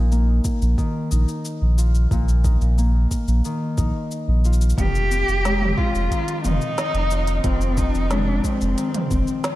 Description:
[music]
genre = folktronica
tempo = 90 BPM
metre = 4/4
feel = straight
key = F minor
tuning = A4 = 440 Hz
[part]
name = Celtic harp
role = arpeggios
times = 0.0-9.6 s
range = F2 to F4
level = -26 LUFS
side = left 2 dB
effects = analog delay
[part]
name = warm sub bass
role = bass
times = 0.0-9.2 s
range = F1 to Bb1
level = -19 LUFS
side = equal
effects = none
[part]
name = organic electronic drum kit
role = drums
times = 0.1-9.6 s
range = cabasa, hi-hat, snare drum, toms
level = -29 LUFS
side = equal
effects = none
[part]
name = electronic kick drum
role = drums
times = 0.4-9.2 s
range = none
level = -23 LUFS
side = equal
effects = none
[part]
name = warm cello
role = melody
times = 4.8-9.6 s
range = C4 to G4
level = -24 LUFS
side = equal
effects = analog delay
[sound]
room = light reverb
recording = none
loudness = -18 LUFS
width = side -16 dB against mid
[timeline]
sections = 0.0-9.6 A section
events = none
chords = 0.0 Bbsus4; 4.8 Fm7

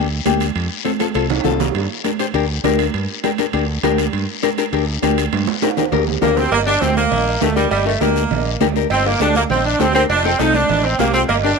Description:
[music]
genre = latin, cumbia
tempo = 201 BPM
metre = 4/4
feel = straight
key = G minor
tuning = A4 = 441 Hz
[part]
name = nylon-string guitar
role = accompaniment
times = 0.0-11.5 s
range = Bb3 to C5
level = -20 LUFS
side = left 15 dB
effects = none
[part]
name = modern bright fingered electric bass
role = bass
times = 0.0-11.5 s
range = F1 to G2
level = -22 LUFS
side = right 1 dB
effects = none
[part]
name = congas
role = percussion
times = 0.3-11.1 s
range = none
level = -24 LUFS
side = right 17 dB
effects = none
[part]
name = guiro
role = percussion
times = 0.3-11.6 s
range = none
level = -30 LUFS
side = left 15 dB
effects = none
[part]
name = timbales and cowbell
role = percussion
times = 0.3-11.4 s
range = none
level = -25 LUFS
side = right 16 dB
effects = none
[part]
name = warm saxophone section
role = melody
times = 6.2-11.6 s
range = G3 to Eb4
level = -17 LUFS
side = right 2 dB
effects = none
[sound]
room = light reverb, small room ambience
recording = 1960s-style stereo with parts hard left and right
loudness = -15 LUFS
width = side -4 dB against mid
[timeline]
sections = 0.0-6.5 A section; 6.5-11.6 B section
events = drum fill 1.0-1.7, 5.3-6.5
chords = 0.0 Gm; 0.6 F; 1.7 Gm; 10.1 F

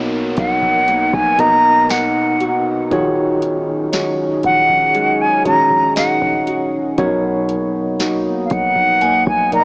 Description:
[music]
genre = contemporary R&B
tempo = 59 BPM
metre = 4/4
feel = straight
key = unclear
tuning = A4 = 440 Hz
[part]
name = tine electric piano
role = accompaniment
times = 0.0-9.6 s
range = B2 to D#5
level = -23 LUFS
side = equal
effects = cassette tape
[part]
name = deep dark ambient pad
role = sustained chords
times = 0.1-9.6 s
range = B2 to A#4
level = -27 LUFS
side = equal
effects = chorus, built-in reverb, sidechain pumping, cassette tape
[part]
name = nylon-string guitar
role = arpeggios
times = 0.0-9.6 s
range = B2 to F#4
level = -27 LUFS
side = equal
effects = cassette tape, analog delay
[part]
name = warm 808-style bass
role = bass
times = 0.0-9.6 s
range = Eb1 to B1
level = -31 LUFS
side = equal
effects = none
[part]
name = downlifter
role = sound effects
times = 0.0-7.0 s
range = none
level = -36 LUFS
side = equal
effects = none
[part]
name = glassy synth bell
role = texture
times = 0.0-9.6 s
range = Db5 to Ab5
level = -33 LUFS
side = equal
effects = none
[part]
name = bright concert flute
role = melody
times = 0.4-9.6 s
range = F5 to Bb5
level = -16 LUFS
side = equal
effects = cassette tape, analog delay
[part]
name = booming analog drum machine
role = drums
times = 0.4-9.6 s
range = hi-hat, kick drum, snare drum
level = -30 LUFS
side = equal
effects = cassette tape
[sound]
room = light reverb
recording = home recording on cassette, small speaker sound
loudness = -16 LUFS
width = mono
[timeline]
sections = 0.0-9.6 A section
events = none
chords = 0.0 Bmaj7; 2.9 Ebm11; 7.0 Bmaj7

